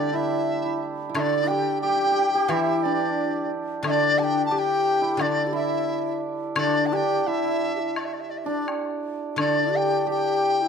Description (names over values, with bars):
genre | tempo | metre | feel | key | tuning
chinese traditional, Chinese chamber ensemble | 88 BPM | 4/4 | rubato | unclear | A4 = 441 Hz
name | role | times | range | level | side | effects
reedy large dizi | melody | 0.0-10.7 s | D5 to A5 | -25 LUFS | left 1 dB | none
breathy xiao | second line | 0.0-10.7 s | D4 to G4 | -28 LUFS | left 9 dB | none
hammered dulcimer | second line | 0.0-10.7 s | G3 to G4 | -27 LUFS | right 6 dB | none
guzheng | accompaniment | 0.0-10.7 s | D3 to E3 | -30 LUFS | right 1 dB | none
woodblock | percussion | 1.2-9.5 s | none | -31 LUFS | left 5 dB | none
room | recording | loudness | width
moderate concert hall reverb, RT60 1.9 s | close, detailed microphones | -21 LUFS | side -6 dB against mid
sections
0.0-10.7 A section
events
none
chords
none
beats
0.48 | 1.16 1.83 2.50 3.17 | 3.84 4.52 5.20 5.88 | 6.57 7.27 7.96 8.67 | 9.38 10.08